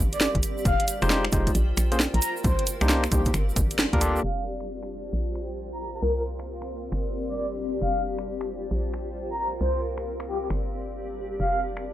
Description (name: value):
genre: UK garage, two-step garage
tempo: 134 BPM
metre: 4/4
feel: swing 64% on 16ths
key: unclear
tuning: A4 = 440 Hz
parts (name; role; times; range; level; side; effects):
- hollow knocking FM bass; bass; 0.0-11.9 s; F1 to D2; -28 LUFS; equal; transformer saturation, sidechain pumping
- egg shaker; percussion; 0.0-4.2 s; none; -35 LUFS; right 5 dB; none
- granular cloud pad; texture; 0.0-11.9 s; C4 to C6; -33 LUFS; left 1 dB; built-in reverb, sidechain pumping
- breathy flute-like synth lead; melody; 0.1-11.6 s; G4 to Bb5; -29 LUFS; left 1 dB; wide subtle chorus, analog delay
- garage drum kit; drums; 0.1-11.8 s; finger snaps, hi-hat, snare drum; -26 LUFS; equal; overdrive
- electronic kick drum; drums; 0.3-4.0 s; none; -26 LUFS; equal; none
- overdriven tine electric piano; stabs; 1.0-4.2 s; Ab3 to C5; -28 LUFS; left 1 dB; analog delay
room: moderate studio reverb, RT60 0.5 s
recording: dry, gritty hardware recording, low-pass filter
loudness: -24 LUFS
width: side -13 dB against mid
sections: 0.0-4.2 A section; 4.2-11.9 B section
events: band accent 3.8; filter sweep 4.2-11.9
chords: 0.0 Gsus2; 0.7 Fm9; 1.5 Bbsus2; 2.4 Cm9; 3.3 Gm9; 4.2 Fsus2; 5.1 Bbsus2; 6.0 Csus2; 6.9 Gsus2; 7.8 Fsus2; 8.7 Bbsus2; 9.6 Csus2; 10.5 Gsus2; 11.4 Fsus2